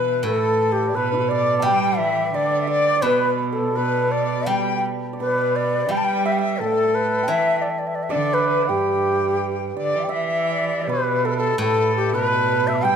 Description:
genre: chinese traditional, Chinese chamber ensemble.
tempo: 85 BPM.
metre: 2/4.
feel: rubato.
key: G gong mode.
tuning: A4 = 440 Hz.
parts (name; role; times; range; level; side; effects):
breathy bright xiao; melody; 0.0-13.0 s; D4 to A5; -22 LUFS; left 2 dB; none.
bright cello; second line; 0.0-13.0 s; G2 to G3; -27 LUFS; right 6 dB; none.
dizi; second line; 0.0-13.0 s; A4 to G6; -26 LUFS; left 5 dB; none.
hammered dulcimer; second line; 0.0-13.0 s; G4 to A5; -25 LUFS; right 5 dB; none.
steel-string zither; accompaniment; 0.0-9.4, 11.6-13.0 s; A2 to G3; -29 LUFS; left 2 dB; none.
room: moderate recital hall reverb, RT60 1.4 s.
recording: minimal, uncompressed stereo recording.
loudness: -18 LUFS.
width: side -7 dB against mid.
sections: 0.0-10.2 A section; 10.2-13.0 B section.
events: none.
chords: none.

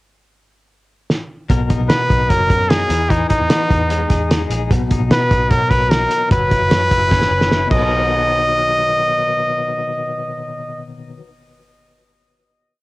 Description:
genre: jangly indie pop.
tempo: 150 BPM.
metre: 4/4.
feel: straight.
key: B major.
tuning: A4 = 437 Hz.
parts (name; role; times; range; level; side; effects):
cloth-damped thuddy drum kit; drums; 1.1-7.8 s; crash cymbal, hi-hat, kick drum, snare drum; -18 LUFS; equal; none.
direct-recorded clean electric guitar; arpeggios; 1.5-11.4 s; B2 to B4; -24 LUFS; left 6 dB; tremolo, cassette tape.
vintage muted picked electric bass; bass; 1.5-10.8 s; F#1 to E3; -21 LUFS; equal; none.
brilliant trumpet; melody; 1.9-10.8 s; D#4 to D#5; -17 LUFS; equal; cassette tape.
room: light reverb.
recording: home recording on cassette.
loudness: -14 LUFS.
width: side -19 dB against mid.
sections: 0.0-1.5 pickup bar; 1.5-7.9 verse; 7.9-11.1 final hit.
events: drum fill 1.1-1.5, 7.1-7.9.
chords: 0.0 N.C.; 1.5 Bmaj7; 2.9 Emaj7; 4.7 Bmaj7; 6.3 F#7sus4; 7.7 Bmaj7.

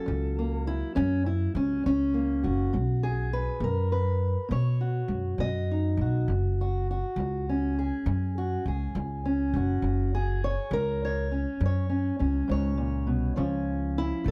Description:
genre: acoustic country blues, solo or duo.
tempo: 68 BPM (dotted quarters).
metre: 12/8.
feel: straight.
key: F# major.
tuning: A4 = 440 Hz.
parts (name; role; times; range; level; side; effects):
fingerpicked steel-string acoustic guitar; melody; 0.0-14.3 s; F#2 to D#5; -31 LUFS; equal; none.
upright bass; bass; 0.1-14.3 s; F#1 to B2; -30 LUFS; equal; none.
room: little or no reverb.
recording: dry, close 1970s-style studio recording.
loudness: -28 LUFS.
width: mono.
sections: 0.0-14.3 A section.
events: none.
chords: 0.0 F#; 2.7 B; 6.3 F#5; 13.4 C#.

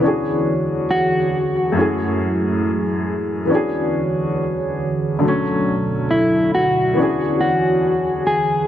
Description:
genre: trip hop.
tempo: 69 BPM.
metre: 4/4.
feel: swing 54% on 16ths.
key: unclear.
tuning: A4 = 440 Hz.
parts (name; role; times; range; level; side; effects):
warm upright piano; accompaniment; 0.0-8.7 s; F#2 to G#4; -21 LUFS; left 1 dB; tremolo, vintage 12-bit sampler grit, tape echo.
dark analog pad; sustained chords; 0.0-8.7 s; B2 to G#5; -22 LUFS; right 1 dB; chorus.
mellow electric guitar; melody; 0.9-8.7 s; E4 to G#4; -19 LUFS; left 1 dB; spring reverb, tape echo.
room: light reverb, small room reverb.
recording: none.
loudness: -16 LUFS.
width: side -11 dB against mid.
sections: 0.0-8.7 A section.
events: none.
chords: 0.0 E13; 1.8 F#m9; 3.5 E13; 5.2 Bm7; 7.0 E13.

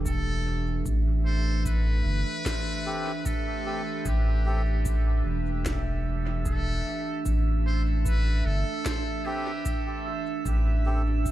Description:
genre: ambient dub.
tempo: 75 BPM.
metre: 4/4.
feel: straight.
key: unclear.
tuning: A4 = 440 Hz.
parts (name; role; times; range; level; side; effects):
warbly tape-like pad; sustained chords; 0.0-11.3 s; E3 to A4; -34 LUFS; right 3 dB; chorus, built-in reverb.
round analog bass; bass; 0.0-11.3 s; E1 to A1; -25 LUFS; equal; none.
trumpet with metal mute; melody; 0.1-10.1 s; G4 to C5; -35 LUFS; equal; dub echo.
electronic cabasa and snare drum; drums; 0.1-11.3 s; none; -39 LUFS; equal; dub echo.
electronic kick drum; drums; 0.1-11.3 s; none; -32 LUFS; equal; none.
drifting glass-harmonics texture; texture; 0.7-11.3 s; E5; -38 LUFS; right 2 dB; chorus, built-in reverb.
melodica; stabs; 2.9-11.0 s; C4 to A4; -38 LUFS; left 1 dB; dub echo.
room: little or no reverb.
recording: echo-heavy mix.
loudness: -24 LUFS.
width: side -14 dB against mid.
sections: 0.0-11.3 A section.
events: none.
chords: 0.0 A7(no3).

